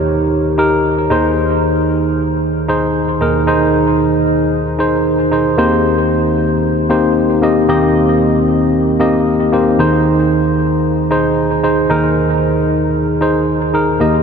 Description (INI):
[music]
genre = pop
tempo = 114 BPM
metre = 4/4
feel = straight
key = unclear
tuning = A4 = 440 Hz
[part]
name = barky tine electric piano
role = solo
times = 0.0-14.2 s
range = Eb2 to Eb5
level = -12 LUFS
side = equal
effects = overdrive, tape echo
[sound]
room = wet huge ambient reverb, RT60 7.6 s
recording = dreamy mix soaked in reverb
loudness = -12 LUFS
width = side -6 dB against mid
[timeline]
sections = 0.0-14.0 A section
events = none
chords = 0.0 Eb; 1.1 Ab/Eb; 5.6 Cm7/Eb; 9.8 Ab/Eb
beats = 0.32 0.85 | 1.37 1.90 2.43 2.95 | 3.48 4.00 4.53 5.06 | 5.58 6.11 6.64 7.16 | 7.69 8.22 8.74 9.27 | 9.79 10.32 10.85 11.37 | 11.90 12.43 12.95 13.48 | 14.01